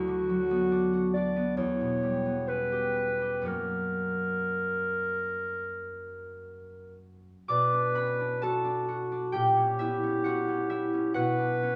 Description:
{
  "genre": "classical, romantic duo for clarinet and harp",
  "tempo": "58-70 BPM",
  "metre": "4/4",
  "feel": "rubato",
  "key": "B minor",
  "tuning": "A4 = 440 Hz",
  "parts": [
    { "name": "dark clarinet", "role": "melody", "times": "0.0-11.8 s", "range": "F#4 to D5", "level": "-32 LUFS", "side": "equal", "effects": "none" },
    { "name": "concert harp", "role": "accompaniment", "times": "0.0-11.8 s", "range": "D2 to D6", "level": "-32 LUFS", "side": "equal", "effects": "none" }
  ],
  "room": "moderate studio reverb, RT60 0.7 s",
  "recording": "small room ambience",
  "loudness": "-29 LUFS",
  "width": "mono",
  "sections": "0.0-7.5 A section; 7.5-11.8 B section",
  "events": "none",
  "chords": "0.0 Bm/D; 1.6 C#m7b5/E; 3.5 F#; 7.5 Bm; 9.3 A#dim7; 11.2 Bm"
}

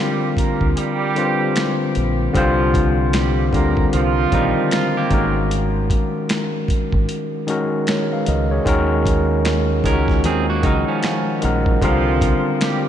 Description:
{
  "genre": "R&B, neo-soul",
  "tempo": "76 BPM",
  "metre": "4/4",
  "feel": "swing 61% on 16ths",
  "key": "C minor",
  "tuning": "A4 = 440 Hz",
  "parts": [
    { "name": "overdriven tine electric piano", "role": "accompaniment", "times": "0.0-12.9 s", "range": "D3 to Gb5", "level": "-19 LUFS", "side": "left 2 dB", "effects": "none" },
    { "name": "warm horn section", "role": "stabs", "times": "0.0-4.9, 11.8-12.9 s", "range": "F3 to Bb4", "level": "-24 LUFS", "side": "right 5 dB", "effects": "ping-pong delay" },
    { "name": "deep dub fingered electric bass", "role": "bass", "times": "0.4-12.3 s", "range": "Ab1 to Eb2", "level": "-21 LUFS", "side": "equal", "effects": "none" },
    { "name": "boom bap sampler-style drum kit", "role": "drums", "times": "0.4-12.8 s", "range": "finger snaps, hi-hat, kick drum, snare drum", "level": "-23 LUFS", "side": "equal", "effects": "none" },
    { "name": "electric guitar at the edge of break-up", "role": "second line", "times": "4.3-11.8 s", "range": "F3 to Bb4", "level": "-27 LUFS", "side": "right 6 dB", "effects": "spring reverb" }
  ],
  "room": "moderate cathedral reverb, RT60 5.9 s",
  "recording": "dreamy mix soaked in reverb, nothing above 10.8 kHz",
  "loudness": "-16 LUFS",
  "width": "side -10 dB against mid",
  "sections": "0.0-12.9 A section",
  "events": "none",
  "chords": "0.0 Cm11; 5.1 Ab9sus4; 8.7 Ebm11; 11.8 C9sus4"
}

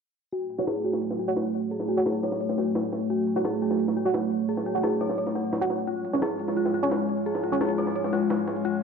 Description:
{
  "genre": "dark technical drum and bass",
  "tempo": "173 BPM",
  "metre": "4/4",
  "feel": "straight",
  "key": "F# harmonic minor",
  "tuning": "A4 = 442 Hz",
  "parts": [
    { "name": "dark analog pad", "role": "sustained chords", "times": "0.8-8.8 s", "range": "G#3 to C#5", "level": "-28 LUFS", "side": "equal", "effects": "chorus" },
    { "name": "dark detuned synth bell", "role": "arpeggios", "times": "0.3-8.8 s", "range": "E#4 to F#5", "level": "-30 LUFS", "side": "left 1 dB", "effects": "chorus, tremolo, low-pass filter, ping-pong delay" },
    { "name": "electronic hi-hat", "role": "drums", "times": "0.3-8.7 s", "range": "none", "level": "-62 LUFS", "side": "left 3 dB", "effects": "none" },
    { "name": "jungle sampler-style drum kit", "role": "drums", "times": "0.3-8.7 s", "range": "hi-hat, snare drum", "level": "-32 LUFS", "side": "equal", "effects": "high-pass filter on hats, high-pass filter on snare, high-pass filter on room" },
    { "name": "airy breathy pad", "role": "texture", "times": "0.3-8.8 s", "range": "F#3 to G#5", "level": "-39 LUFS", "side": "right 3 dB", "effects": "chorus" },
    { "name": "orchestra-hit-like synth stab", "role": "stabs", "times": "0.6-7.6 s", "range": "C#4 to F#5", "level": "-30 LUFS", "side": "right 2 dB", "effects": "built-in reverb, cassette tape, ping-pong delay" }
  ],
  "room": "light reverb",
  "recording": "low-pass filter",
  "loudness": "-24 LUFS",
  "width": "side -6 dB against mid",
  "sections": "0.3-8.8 A section",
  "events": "fade-in on analog synth pad 0.3-8.8; filter sweep on synth bell 0.3-8.8; filter sweep 0.3-8.8",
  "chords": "0.3 F#m; 5.9 C#"
}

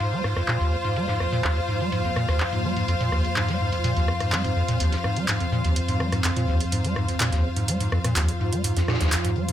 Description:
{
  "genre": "acid house",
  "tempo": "125 BPM",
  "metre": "4/4",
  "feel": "straight",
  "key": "F minor",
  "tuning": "A4 = 438 Hz",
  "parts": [
    { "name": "warbly tape-like pad", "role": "sustained chords", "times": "0.0-9.5 s", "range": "F2 to F4", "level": "-28 LUFS", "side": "equal", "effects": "chorus, built-in reverb" },
    { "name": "acid bass, square", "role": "riff", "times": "0.0-9.5 s", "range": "Eb2 to Ab3", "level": "-24 LUFS", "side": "equal", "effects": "tube saturation, analog chorus, vintage 12-bit sampler grit, tape echo" },
    { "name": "electro analog drum machine", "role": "drums", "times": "0.0-9.5 s", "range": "handclaps, hi-hat, rim click", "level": "-28 LUFS", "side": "equal", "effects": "low-pass filter on snare, low-pass filter on hats, low-pass filter on toms" },
    { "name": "gated 80s drum kit", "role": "drums", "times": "0.0-9.5 s", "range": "hi-hat, snare drum", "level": "-36 LUFS", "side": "equal", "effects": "high-pass filter on hats, low-pass filter on hats, high-pass filter on snare, low-pass filter on snare, high-pass filter on room, low-pass filter on room" },
    { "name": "clear symphonic string section", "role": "texture", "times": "0.0-9.5 s", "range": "F4 to F5", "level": "-28 LUFS", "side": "left 1 dB", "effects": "none" }
  ],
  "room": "moderate studio reverb, RT60 0.5 s",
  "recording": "none",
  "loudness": "-21 LUFS",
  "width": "side -11 dB against mid",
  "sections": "0.0-9.5 A section",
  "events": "filter sweep on drum 0.0-9.5; filter sweep on ambient pad 0.0-9.5",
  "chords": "0.0 F5"
}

